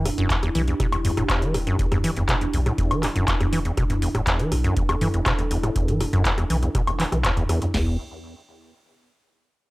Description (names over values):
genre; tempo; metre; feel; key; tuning
acid house; 121 BPM; 4/4; straight; E minor; A4 = 439 Hz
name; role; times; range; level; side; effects
dark analog pad; sustained chords; 0.0-8.0 s; D4 to A4; -31 LUFS; right 1 dB; chorus, phaser, sidechain pumping
deep acid bass; riff; 0.0-8.0 s; E2 to E3; -25 LUFS; equal; analog delay
warm sub bass; bass; 0.0-8.0 s; E1 to B1; -28 LUFS; equal; sidechain pumping
booming analog drum machine; drums; 0.1-7.7 s; handclaps, hi-hat, rim click, toms, woodblock; -25 LUFS; equal; none
booming analog drum machine; drums; 0.3-7.9 s; crash cymbal, kick drum, snare drum, toms; -26 LUFS; equal; none
room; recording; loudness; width
little or no reverb; dry, gritty hardware recording, transformer saturation; -20 LUFS; side -20 dB against mid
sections
0.0-7.7 A section; 7.7-9.7 B section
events
none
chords
0.0 Em7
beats
0.30 0.80 1.29 | 1.79 2.29 2.78 3.28 | 3.77 4.27 4.77 5.26 | 5.76 6.25 6.75 7.25 | 7.74